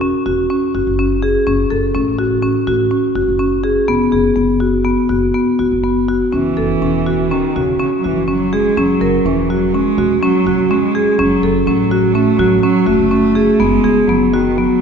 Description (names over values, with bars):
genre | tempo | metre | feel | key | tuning
contemporary instrumental, chamber music in an uneven meter | 124 BPM | 5/4 | straight | F# dorian | A4 = 440 Hz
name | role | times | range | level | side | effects
marimba with medium hard mallets | arpeggios | 0.0-14.8 s | B3 to A#4 | -14 LUFS | left 1 dB | none
upright bass | bass | 0.0-14.7 s | E1 to A1 | -22 LUFS | equal | none
rich cello | second line | 6.3-14.8 s | C#3 to A3 | -16 LUFS | right 4 dB | none
room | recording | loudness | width
moderate concert hall reverb, RT60 2.2 s | recorded in a church or concert hall, nothing above 8.0 kHz | -12 LUFS | side -6 dB against mid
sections
0.0-14.8 A section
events
none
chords
0.0 F#7(no3); 1.5 F#m; 3.9 G#m7/F# (rootless); 6.3 F#7(no3); 11.2 F#m; 13.6 G#m7/F#